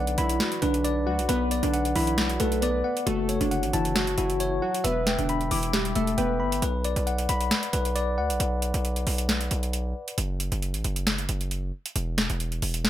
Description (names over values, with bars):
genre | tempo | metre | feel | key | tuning
hip hop, trap | 135 BPM | 4/4 | half-time | B minor | A4 = 439 Hz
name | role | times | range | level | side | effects
glassy digital keys | melody | 0.0-6.6 s | D3 to B4 | -27 LUFS | equal | chorus, low-pass filter
bell-like tine electric piano | accompaniment | 0.0-10.2 s | F#4 to D6 | -29 LUFS | left 2 dB | fast stereo tremolo, low-pass filter
distorted 808-style bass | bass | 0.0-12.9 s | E1 to D2 | -28 LUFS | equal | distortion
booming analog drum machine | drums | 0.1-12.9 s | hi-hat, snare drum | -28 LUFS | equal | overdrive
room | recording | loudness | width
light reverb | none | -24 LUFS | side -12 dB against mid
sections
0.0-12.9 A section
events
break 6.6-12.9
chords
0.0 Bm; 3.1 F#m; 4.8 Em7; 6.6 Bm; 10.2 N.C.